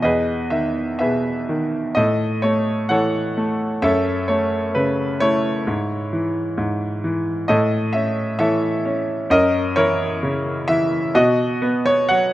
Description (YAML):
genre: classical, lyrical solo piano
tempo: 65 BPM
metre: 4/4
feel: rubato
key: E major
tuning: A4 = 440 Hz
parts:
  - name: bright grand piano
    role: solo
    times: 0.0-12.3 s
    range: E2 to F#5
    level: -17 LUFS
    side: equal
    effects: none
room: light reverb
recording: close, detailed microphones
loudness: -18 LUFS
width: side -15 dB against mid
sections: 0.0-12.3 A section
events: none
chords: 0.0 Emaj7; 2.0 A; 3.8 F#m7; 5.7 C#m/G#; 7.5 A; 9.3 F#7; 11.1 B5